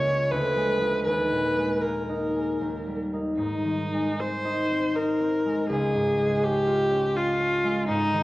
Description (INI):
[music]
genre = classical, romantic duo for viola and harp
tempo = 72-83 BPM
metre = 3/4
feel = rubato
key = unclear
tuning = A4 = 440 Hz
[part]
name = rich viola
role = melody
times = 0.0-8.2 s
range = Eb4 to Db5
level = -25 LUFS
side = equal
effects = none
[part]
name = concert harp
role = accompaniment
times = 0.0-8.2 s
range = Db2 to Ab4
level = -26 LUFS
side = equal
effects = none
[sound]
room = wet recital hall reverb, RT60 1.6 s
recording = worn, warbling old tape, cassette tape, warbly pitch drift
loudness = -23 LUFS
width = side -18 dB against mid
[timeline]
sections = 0.0-8.2 A section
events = none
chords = 0.3 Ddim7; 1.1 Ebsus4; 2.6 Eb; 3.4 Ab; 5.7 Db